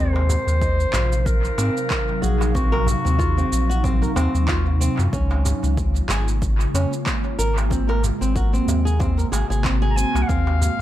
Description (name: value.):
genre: organic downtempo.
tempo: 93 BPM.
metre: 4/4.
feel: swing 56% on 16ths.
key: Eb dorian.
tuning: A4 = 440 Hz.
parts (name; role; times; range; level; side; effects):
warm clarinet; melody; 0.0-4.5, 9.9-10.8 s; Gb4 to Bb5; -26 LUFS; left 1 dB; tape echo.
ethereal airy pad; sustained chords; 0.0-10.8 s; C3 to F5; -27 LUFS; equal; ensemble chorus, built-in reverb, sidechain pumping.
flamenco guitar; arpeggios; 0.0-10.8 s; C4 to Bb4; -27 LUFS; right 1 dB; analog delay.
warm sub bass; bass; 0.0-10.8 s; Ab1 to Ab2; -20 LUFS; equal; sidechain pumping.
darbuka; percussion; 0.2-10.8 s; none; -31 LUFS; right 2 dB; none.
electronic shaker and handclaps; drums; 0.3-10.8 s; none; -30 LUFS; right 2 dB; overdrive, studio reverb, analog delay.
electronic kick drum; drums; 0.6-10.4 s; none; -25 LUFS; equal; overdrive, studio reverb.
room: small room ambience.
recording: echo-heavy mix.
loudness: -18 LUFS.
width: side -13 dB against mid.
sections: 0.0-10.8 A section.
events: none.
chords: 0.0 Ebm69; 5.1 Db6; 7.7 Ab9; 10.3 Ebm69.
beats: 0.61 1.26 1.91 | 2.55 3.20 3.84 4.49 | 5.13 5.78 6.42 7.07 | 7.71 8.36 9.00 9.65 | 10.29.